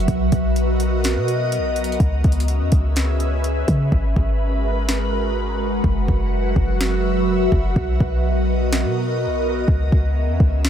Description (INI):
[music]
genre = hip hop, atmospheric cloud-rap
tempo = 125 BPM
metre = 4/4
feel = half-time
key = B major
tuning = A4 = 440 Hz
[part]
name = ethereal airy pad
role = sustained chords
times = 0.0-10.7 s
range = F#3 to E5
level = -22 LUFS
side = equal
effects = ensemble chorus, built-in reverb, phaser, sidechain pumping
[part]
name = clean 808-style bass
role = bass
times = 0.0-10.7 s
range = F#1 to C#3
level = -20 LUFS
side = equal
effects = none
[part]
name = smooth R&B drum kit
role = drums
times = 0.0-10.7 s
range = hi-hat, kick drum, snare drum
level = -22 LUFS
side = equal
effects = overdrive
[sound]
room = light reverb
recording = none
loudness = -17 LUFS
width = side -9 dB against mid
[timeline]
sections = 0.0-10.7 A section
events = hi-hats muted 3.9-10.7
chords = 0.1 Bmaj7; 2.0 C#m7; 3.9 G#m9; 5.8 F#7sus4; 7.8 Bmaj7; 9.7 C#m7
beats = | 0.08 0.56 1.04 1.52 | 2.00 2.48 2.96 3.44 | 3.92 4.40 4.88 5.36 | 5.84 6.32 6.80 7.28 | 7.76 8.24 8.72 9.20 | 9.68 10.16 10.64